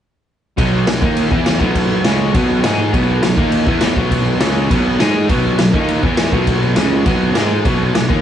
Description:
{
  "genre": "punk rock",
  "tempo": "204 BPM",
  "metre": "4/4",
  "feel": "straight",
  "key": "B major",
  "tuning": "A4 = 440 Hz",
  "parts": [
    { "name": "distorted electric guitar", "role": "riff", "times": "0.6-8.2 s", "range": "B2 to G#4", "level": "-20 LUFS", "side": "left 5 dB", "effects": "distortion" },
    { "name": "fuzz guitar", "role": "riff", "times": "0.6-8.2 s", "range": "B2 to G#4", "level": "-25 LUFS", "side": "equal", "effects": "none" },
    { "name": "overdriven semi-hollow guitar", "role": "riff", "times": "0.6-8.2 s", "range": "B2 to G#4", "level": "-18 LUFS", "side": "right 4 dB", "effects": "none" },
    { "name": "fuzz picked electric bass", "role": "bass", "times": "0.6-8.2 s", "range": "B1 to G#2", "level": "-22 LUFS", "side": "equal", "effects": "overdrive" },
    { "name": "raw garage drum kit", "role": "drums", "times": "0.6-8.2 s", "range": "crash cymbal, kick drum, snare drum", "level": "-16 LUFS", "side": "equal", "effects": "none" }
  ],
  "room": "light reverb",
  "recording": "rough rehearsal-room recording, nothing above 10.5 kHz",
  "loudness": "-13 LUFS",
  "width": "side -10 dB against mid",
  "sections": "0.6-8.2 A section",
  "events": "none",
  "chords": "0.6 B5; 1.0 D#5; 1.3 E5; 1.6 B5; 2.0 C#5; 2.3 B5; 2.6 G#5; 2.9 B5; 3.4 D#5; 3.7 E5; 4.0 B5; 4.4 C#5; 4.7 B5; 5.0 G#5; 5.3 B5; 5.7 D#5; 6.0 E5; 6.3 B5; 6.8 C#5; 7.1 B5; 7.4 G#5; 7.7 B5"
}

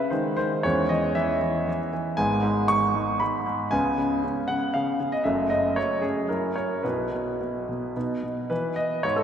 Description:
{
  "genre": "classical-period piano sonatina",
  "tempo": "107-119 BPM",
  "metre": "3/4",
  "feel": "rubato",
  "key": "E major",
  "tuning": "A4 = 440 Hz",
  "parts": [
    { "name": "bright concert grand piano", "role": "solo", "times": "0.0-9.2 s", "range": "F#1 to C#6", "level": "-23 LUFS", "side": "equal", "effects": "none" }
  ],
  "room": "wet church reverb, RT60 3.3 s",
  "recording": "none",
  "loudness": "-23 LUFS",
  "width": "side -8 dB against mid",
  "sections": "0.0-8.5 A section",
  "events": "none",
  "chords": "0.1 G#/D#; 0.6 C#m/E; 2.2 G#madd11; 3.7 C#5; 5.3 F#m; 6.3 F#7; 6.8 E5/B; 8.0 B; 8.5 E"
}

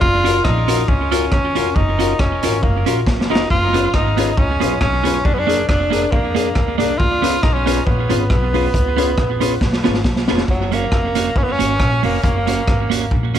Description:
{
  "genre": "ska",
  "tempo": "138 BPM",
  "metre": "4/4",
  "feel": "swing 54% on 8ths",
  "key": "F# major",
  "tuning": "A4 = 440 Hz",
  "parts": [
    { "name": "bright tenor saxophone", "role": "melody", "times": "0.0-13.1 s", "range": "F#3 to E#4", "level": "-20 LUFS", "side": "equal", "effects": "tape echo" },
    { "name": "upright bass", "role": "bass", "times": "0.0-13.4 s", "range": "E#1 to E#2", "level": "-22 LUFS", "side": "equal", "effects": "none" },
    { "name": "raw garage drum kit", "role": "drums", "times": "0.0-13.4 s", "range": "hi-hat, kick drum, rim click, snare drum", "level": "-19 LUFS", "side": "equal", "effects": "tape echo" },
    { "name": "clean electric guitar", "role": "accompaniment", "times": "0.2-13.4 s", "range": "A#3 to A#4", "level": "-23 LUFS", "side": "right 11 dB", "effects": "tape echo" },
    { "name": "dark upright piano", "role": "stabs", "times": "0.2-10.4 s", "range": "C#4 to B4", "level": "-23 LUFS", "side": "left 12 dB", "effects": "none" }
  ],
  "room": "light reverb, studio reverb",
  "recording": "1960s-style stereo with parts hard left and right",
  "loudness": "-14 LUFS",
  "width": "side -10 dB against mid",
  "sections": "0.0-10.5 A section; 10.5-13.4 B section",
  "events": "drum fill 3.1-3.5, 9.6-10.5",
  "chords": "0.0 F#maj7; 3.5 C#7/F#; 5.2 A#7; 7.0 C#7; 10.5 F#"
}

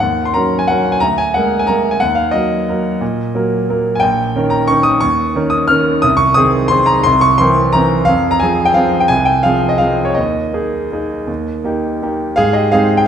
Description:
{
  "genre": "classical, piano waltz",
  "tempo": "158-190 BPM",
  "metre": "3/4",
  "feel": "rubato",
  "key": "unclear",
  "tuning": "A4 = 441 Hz",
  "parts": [
    { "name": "clear grand piano", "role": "solo", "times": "0.0-13.1 s", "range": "Bb1 to F6", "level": "-12 LUFS", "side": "equal", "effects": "none" }
  ],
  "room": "wet scoring stage reverb, RT60 1.4 s",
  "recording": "minimal, uncompressed stereo recording",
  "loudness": "-12 LUFS",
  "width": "side -8 dB against mid",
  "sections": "0.0-12.4 A section",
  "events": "none",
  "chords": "0.0 Ebm7; 1.0 Bb7/D; 2.0 Ebm; 4.0 Eb7/Bb; 6.0 Ab/C; 7.1 C7; 8.1 Fm; 10.2 Ebsus4; 11.3 Eb; 12.4 Ab"
}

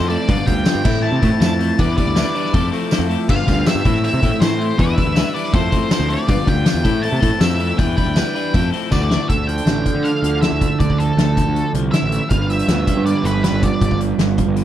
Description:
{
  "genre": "indie rock",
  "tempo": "160 BPM",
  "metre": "4/4",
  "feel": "straight",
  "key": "G mixolydian",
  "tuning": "A4 = 440 Hz",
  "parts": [
    { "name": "octave-fuzz lead guitar", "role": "melody", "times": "0.0-14.0 s", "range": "A4 to A5", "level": "-24 LUFS", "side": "equal", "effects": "distortion, tape echo" },
    { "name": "electric guitar at the edge of break-up", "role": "riff", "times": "0.0-14.6 s", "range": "G2 to B4", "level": "-24 LUFS", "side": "left 7 dB", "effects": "wide subtle chorus" },
    { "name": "overdriven electric guitar", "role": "riff", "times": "0.0-14.6 s", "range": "E2 to B4", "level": "-23 LUFS", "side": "right 7 dB", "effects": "analog chorus, tape echo" },
    { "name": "fuzz picked electric bass", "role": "bass", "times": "0.0-14.6 s", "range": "G1 to D3", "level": "-20 LUFS", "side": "equal", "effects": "overdrive" },
    { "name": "loose indie drum kit", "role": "drums", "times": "0.1-14.6 s", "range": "crash cymbal, hi-hat, kick drum, snare drum", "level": "-19 LUFS", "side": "equal", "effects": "none" },
    { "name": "tambourine", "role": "percussion", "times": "0.7-9.0 s", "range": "none", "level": "-34 LUFS", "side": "right 6 dB", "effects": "none" }
  ],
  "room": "small room reverb",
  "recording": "none",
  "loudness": "-15 LUFS",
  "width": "side -12 dB against mid",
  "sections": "0.0-9.3 A section; 9.3-14.6 B section",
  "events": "drum fill 8.9-9.3",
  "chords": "0.3 G7; 0.9 Am; 1.8 Em7; 2.5 Fmaj7; 3.3 G7; 3.8 Am; 4.8 Em7; 5.5 Fmaj7; 6.3 G7; 6.8 Am; 7.8 Em7; 8.5 Fmaj7; 8.9 Dadd9; 9.3 Dmadd9; 12.3 G7"
}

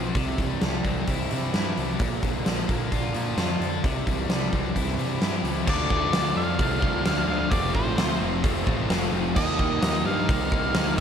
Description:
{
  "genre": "classic rock",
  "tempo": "130 BPM",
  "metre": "4/4",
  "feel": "straight",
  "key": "unclear",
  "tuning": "A4 = 441 Hz",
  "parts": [
    { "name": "overdriven semi-hollow guitar", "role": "riff", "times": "0.0-11.0 s", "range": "F2 to G4", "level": "-31 LUFS", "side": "right 8 dB", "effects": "none" },
    { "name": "tight distorted guitar", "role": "riff", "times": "0.0-11.0 s", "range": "Bb2 to F4", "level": "-32 LUFS", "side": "left 9 dB", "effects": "distortion, slapback echo" },
    { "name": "fuzz picked electric bass", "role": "bass", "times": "0.0-11.0 s", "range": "F1 to C3", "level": "-30 LUFS", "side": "equal", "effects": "overdrive" },
    { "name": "huge arena drum kit", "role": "drums", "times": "0.1-11.0 s", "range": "crash cymbal, hi-hat, kick drum, snare drum", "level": "-26 LUFS", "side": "equal", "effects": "none" },
    { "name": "octave-fuzz lead guitar", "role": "melody", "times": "5.7-11.0 s", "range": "C5 to F5", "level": "-29 LUFS", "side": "left 1 dB", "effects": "distortion, slapback echo, tape echo" },
    { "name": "overdriven electric guitar", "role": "riff", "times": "5.7-11.0 s", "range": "F2 to Eb4", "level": "-34 LUFS", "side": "equal", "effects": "none" }
  ],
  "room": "moderate lush hall reverb, RT60 1.9 s",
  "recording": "big arena sound",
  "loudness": "-22 LUFS",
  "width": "side -8 dB against mid",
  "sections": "0.0-5.7 A section; 5.7-11.0 B section",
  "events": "none",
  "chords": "0.1 C; 2.0 Bb; 3.8 C; 5.7 Dm; 7.5 F; 9.4 Eb"
}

